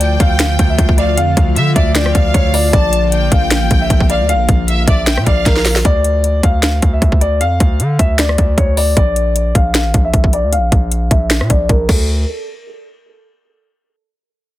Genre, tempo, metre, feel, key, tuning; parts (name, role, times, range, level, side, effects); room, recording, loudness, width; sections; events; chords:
hip hop, trap; 154 BPM; 4/4; half-time; D minor; A4 = 440 Hz
dark concert grand piano; melody; 0.0-12.1 s; A4 to F5; -18 LUFS; left 1 dB; low-pass filter, digital delay
clear studio violin section; second line; 0.0-5.8 s; D5 to A5; -22 LUFS; equal; digital delay
airy breathy pad; sustained chords; 0.0-5.8 s; D3 to F4; -22 LUFS; equal; chorus
hard-hitting 808-style bass; bass; 0.0-12.3 s; A1 to D3; -15 LUFS; equal
trap drum kit; drums; 0.0-12.0 s; crash cymbal, finger snaps, hi-hat, kick drum, rim click, snare drum; -14 LUFS; equal
digital ambience; dense, heavily limited modern master; -11 LUFS; side -15 dB against mid
0.0-5.8 A section; 5.8-12.1 B section; 12.1-13.6 C section
drum fill 5.5-5.8; filter sweep on grand piano 5.8-12.1
0.0 Dm; 2.7 Bb; 5.8 Dm; 9.0 Bb; 11.9 D5; 12.1 N.C.